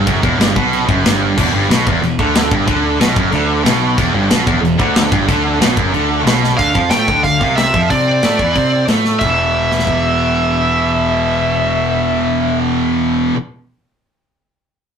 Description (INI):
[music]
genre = heavy metal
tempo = 184 BPM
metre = 4/4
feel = straight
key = E minor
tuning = A4 = 440 Hz
[part]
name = heavy high-gain guitar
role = riff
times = 0.0-13.4 s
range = E2 to C4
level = -17 LUFS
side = right 6 dB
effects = distortion
[part]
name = scooped high-gain guitar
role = riff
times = 0.0-13.4 s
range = E2 to C4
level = -20 LUFS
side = left 9 dB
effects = distortion
[part]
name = growling picked electric bass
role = bass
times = 0.0-13.3 s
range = E1 to C3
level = -20 LUFS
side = left 1 dB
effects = overdrive
[part]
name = modern studio drum kit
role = drums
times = 0.1-9.9 s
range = china cymbal, crash cymbal, hi-hat, kick drum, snare drum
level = -17 LUFS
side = left 1 dB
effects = none
[part]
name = high-gain lead guitar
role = melody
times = 6.6-12.6 s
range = D5 to G5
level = -16 LUFS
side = equal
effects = distortion
[sound]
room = moderate studio reverb, RT60 0.5 s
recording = rough rehearsal-room recording, tube saturation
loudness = -12 LUFS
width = side -7 dB against mid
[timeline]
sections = 0.0-6.6 A section; 6.6-9.2 B section; 9.2-11.8 C section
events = drum fill 6.4, 9.0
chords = 0.0 Em; 6.6 D5; 9.2 E5